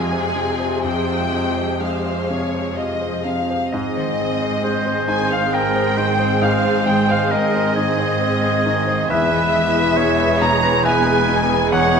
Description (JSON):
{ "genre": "cinematic", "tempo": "62-70 BPM", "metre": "3/4", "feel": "rubato", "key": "Ab major", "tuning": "A4 = 440 Hz", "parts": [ { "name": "warm symphonic violin section", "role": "melody", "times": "0.0-12.0 s", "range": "Eb5 to Bb5", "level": "-27 LUFS", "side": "left 2 dB", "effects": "none" }, { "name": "warm studio violin section", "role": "second line", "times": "0.0-12.0 s", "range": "Ab4 to Bb5", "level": "-24 LUFS", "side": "left 2 dB", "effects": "none" }, { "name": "clear concert grand piano", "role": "accompaniment", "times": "0.0-12.0 s", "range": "E2 to Bb5", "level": "-22 LUFS", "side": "equal", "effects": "none" }, { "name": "warm symphonic viola section", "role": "accompaniment", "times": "0.0-12.0 s", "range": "C3 to Ab4", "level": "-25 LUFS", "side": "right 2 dB", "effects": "none" }, { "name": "concert harp", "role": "arpeggios", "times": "0.0-12.0 s", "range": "Ab2 to C6", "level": "-29 LUFS", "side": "left 6 dB", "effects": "none" }, { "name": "rich symphonic cello section", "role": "bass", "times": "0.0-12.0 s", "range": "E2 to Ab2", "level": "-27 LUFS", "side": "right 4 dB", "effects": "none" }, { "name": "mellow French horn section", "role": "sustained chords", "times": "3.7-12.0 s", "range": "Ab3 to E4", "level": "-26 LUFS", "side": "left 3 dB", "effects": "none" }, { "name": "warm symphonic double bass section", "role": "bass", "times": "3.7-12.0 s", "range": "E1 to Ab1", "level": "-28 LUFS", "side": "right 6 dB", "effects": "none" }, { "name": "warm oboe", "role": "second line", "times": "4.6-12.0 s", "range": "Ab4 to Db5", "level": "-22 LUFS", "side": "right 2 dB", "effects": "none" } ], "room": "wet scoring stage reverb, RT60 1.8 s", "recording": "none", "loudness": "-16 LUFS", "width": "side -6 dB against mid", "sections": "0.0-3.7 A section; 3.7-12.0 A section", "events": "none", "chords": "0.0 Fm; 3.7 Ab; 9.1 E" }